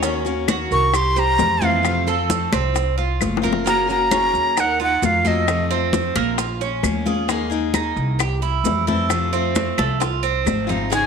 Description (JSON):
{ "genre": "latin, Cuban son and guajira", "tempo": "132 BPM", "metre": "4/4", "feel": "straight", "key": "unclear", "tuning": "A4 = 440 Hz", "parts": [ { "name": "picked steel-string acoustic guitar", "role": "accompaniment", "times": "0.0-11.1 s", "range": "C3 to Ab4", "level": "-26 LUFS", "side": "left 8 dB", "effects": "none" }, { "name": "Cuban tres", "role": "arpeggios", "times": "0.0-11.1 s", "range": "Ab3 to C5", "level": "-24 LUFS", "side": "right 8 dB", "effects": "none" }, { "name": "upright bass", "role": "bass", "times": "0.0-11.1 s", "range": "Gb1 to F2", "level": "-24 LUFS", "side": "equal", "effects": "none" }, { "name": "bongos", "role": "percussion", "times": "0.0-11.1 s", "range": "none", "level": "-28 LUFS", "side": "left 10 dB", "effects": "none" }, { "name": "congas", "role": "percussion", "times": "0.0-11.1 s", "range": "none", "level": "-26 LUFS", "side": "left 1 dB", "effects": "none" }, { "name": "maracas", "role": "percussion", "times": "0.0-11.1 s", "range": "none", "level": "-32 LUFS", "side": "right 16 dB", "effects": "none" }, { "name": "claves", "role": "percussion", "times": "0.5-10.7 s", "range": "none", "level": "-31 LUFS", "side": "left 12 dB", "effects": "none" }, { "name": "breathy bright jazz flute", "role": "melody", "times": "0.7-5.7, 10.9-11.1 s", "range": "Eb5 to Db6", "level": "-19 LUFS", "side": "equal", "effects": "none" }, { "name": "nylon-string guitar", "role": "second line", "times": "0.7-5.7, 10.9-11.1 s", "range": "Bb3 to Bb4", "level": "-27 LUFS", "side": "right 7 dB", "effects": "none" } ], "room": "moderate echo chamber reverb, RT60 1.3 s, small room ambience", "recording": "1960s-style stereo with parts hard left and right", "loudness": "-17 LUFS", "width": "side -6 dB against mid", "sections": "0.0-3.7 A section; 3.7-11.1 B section", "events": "drum fill 3.2-3.7, 10.5-10.9", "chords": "0.0 Ebm7; 0.9 C7; 1.9 F; 3.7 Gbadd9; 4.6 Ebmadd9; 5.5 F; 6.4 Bbm; 7.3 Ebsus4; 8.2 C; 9.1 F", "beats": "| 0.03 0.49 0.94 1.40 | 1.85 2.31 2.76 3.21 | 3.67 4.12 4.57 5.03 | 5.48 5.93 6.39 6.84 | 7.29 7.75 8.20 8.65 | 9.11 9.56 10.01 10.47 | 10.92" }